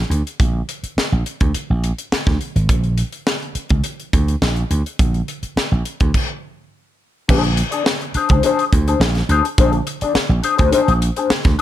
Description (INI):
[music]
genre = funk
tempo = 104 BPM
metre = 4/4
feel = straight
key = Bb mixolydian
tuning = A4 = 440 Hz
[part]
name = slap bass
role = bass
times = 0.0-11.5 s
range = Ab1 to D2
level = -17 LUFS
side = right 1 dB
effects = none
[part]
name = crisp fusion drum kit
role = drums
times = 0.1-11.6 s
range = crash cymbal, hi-hat, kick drum, snare drum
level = -19 LUFS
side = equal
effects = none
[part]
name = mellow electric guitar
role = accompaniment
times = 7.3-11.6 s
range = D4 to D5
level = -18 LUFS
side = left 6 dB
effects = wah
[sound]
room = little or no reverb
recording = none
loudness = -16 LUFS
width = side -13 dB against mid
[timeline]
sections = 0.0-7.3 A section; 7.3-11.6 B section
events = stop 6.1-7.3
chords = 0.0 Bb; 7.3 Bb9